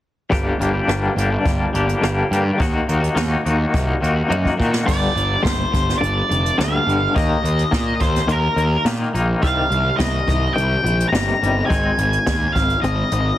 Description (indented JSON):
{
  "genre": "quiet-loud alternative rock",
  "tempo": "106 BPM",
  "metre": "4/4",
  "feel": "straight",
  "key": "G phrygian",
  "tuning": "A4 = 438 Hz",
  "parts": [
    { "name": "twangy electric guitar", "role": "arpeggios", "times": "0.3-13.4 s", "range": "G2 to G4", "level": "-22 LUFS", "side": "left 3 dB", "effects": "tremolo" },
    { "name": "fuzz picked electric bass", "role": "bass", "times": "0.3-13.3 s", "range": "F1 to Bb2", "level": "-20 LUFS", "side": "equal", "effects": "overdrive" },
    { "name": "jazz brush drum kit", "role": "drums", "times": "0.3-13.3 s", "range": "crash cymbal, hi-hat, kick drum, rim click, snare drum, toms", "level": "-23 LUFS", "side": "equal", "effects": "none" },
    { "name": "octave-fuzz lead guitar", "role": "melody", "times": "4.9-13.4 s", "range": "Bb4 to Bb5", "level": "-21 LUFS", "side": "left 1 dB", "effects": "distortion" }
  ],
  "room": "light reverb, small room ambience",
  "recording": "heavily compressed radio sound",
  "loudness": "-16 LUFS",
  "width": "side -13 dB against mid",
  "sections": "0.3-4.9 A section; 4.9-13.4 B section",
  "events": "drum fill 4.3-4.9",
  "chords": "0.3 Gm; 2.6 Ebm; 4.9 G5; 7.2 Eb5; 9.4 Cm; 11.7 Ab",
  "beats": "| 0.32 0.89 1.46 2.03 | 2.60 3.17 3.74 4.31 | 4.88 5.45 6.02 6.59 | 7.16 7.72 8.29 8.86 | 9.43 10.00 10.57 11.13 | 11.70 12.27 12.84"
}